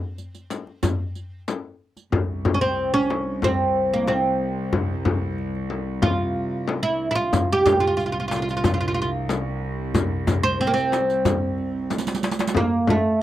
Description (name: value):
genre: Turkish makam ensemble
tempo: 92 BPM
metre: 4/4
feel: straight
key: C makam hicaz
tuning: A4 = 441 Hz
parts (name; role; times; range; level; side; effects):
- oud; melody; 0.0-13.2 s; A3 to C5; -22 LUFS; right 1 dB; none
- darbuka; percussion; 0.2-13.0 s; none; -26 LUFS; left 1 dB; none
- riq; percussion; 0.2-2.0, 7.3-12.6 s; none; -30 LUFS; right 7 dB; none
- frame drum; percussion; 0.5-13.0 s; none; -27 LUFS; left 5 dB; none
- rich studio cello section; drone; 2.1-12.6 s; C2; -30 LUFS; equal; none
room: light reverb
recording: dry, close 1970s-style studio recording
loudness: -20 LUFS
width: side -13 dB against mid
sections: 0.0-2.1 A section; 2.1-12.6 B section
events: drum fill 11.9-12.6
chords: none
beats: 0.17 0.82 1.48 | 2.12 2.77 3.43 4.08 | 4.73 5.38 6.03 6.68 | 7.33 7.99 8.64 9.29 | 9.94 10.60 11.25 11.90 | 12.55 13.21